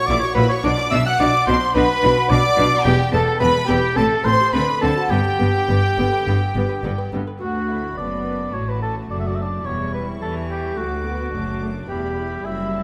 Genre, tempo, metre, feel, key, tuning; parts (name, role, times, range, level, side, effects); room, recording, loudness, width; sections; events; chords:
classical, baroque-style concerto movement with solo episodes; 108 BPM; 4/4; straight; G major, D major from 7.4 s; A4 = 440 Hz
clear studio violin section; melody; 0.0-12.8 s; G5 to F#6; -30 LUFS; equal
mellow oboe; melody; 0.0-12.8 s; F#4 to F#5; -24 LUFS; equal
rich chamber violin section; second line; 0.0-12.8 s; D4 to F#5; -29 LUFS; equal
lute; accompaniment; 0.0-12.8 s; D2 to E5; -32 LUFS; equal
rich studio viola section; accompaniment; 0.1-12.8 s; G3 to E4; -29 LUFS; equal
clear chamber cello section; bass; 0.1-12.8 s; D2 to E3; -28 LUFS; equal
rich chamber double bass section; bass; 0.1-12.8 s; E1 to E2; -27 LUFS; equal
moderate concert hall reverb, RT60 2.0 s; -19 LUFS; mono
0.0-7.4 A section; 7.4-12.8 B section
0.0 F#7/A#; 0.6 Bm; 2.9 Em; 4.0 Am7; 4.5 D7; 5.1 G; 7.4 D; 9.7 C#dim/E; 10.8 D; 11.9 Em